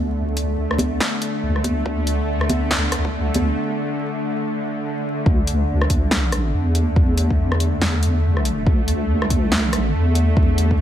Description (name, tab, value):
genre	deep dubstep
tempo	141 BPM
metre	4/4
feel	swing 60% on 16ths, half-time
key	unclear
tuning	A4 = 437 Hz
part	bowed-like drone	sustained chords	0.0-10.8 s	D3 to A3	-24 LUFS	equal	built-in reverb
part	deep soft wobble bass	bass	0.0-10.8 s	D2 to E2	-20 LUFS	equal	chorus
part	deep house drum kit	drums	0.4-10.7 s	hi-hat, rim click, snare drum	-23 LUFS	equal	high-pass filter on hats, high-pass filter on snare, high-pass filter on room
part	congas	percussion	0.8-3.5 s	none	-27 LUFS	equal	dub echo
part	electronic kick drum	drums	1.6-10.8 s	none	-18 LUFS	equal	high-pass filter on kick, high-pass filter on room
room	light reverb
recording	vinyl crackle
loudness	-17 LUFS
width	side -11 dB against mid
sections	0.0-5.3 A section; 5.3-10.8 B section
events	build-up 0.0-5.3; break 3.6-5.3; drop 5.3-10.8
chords	0.0 D5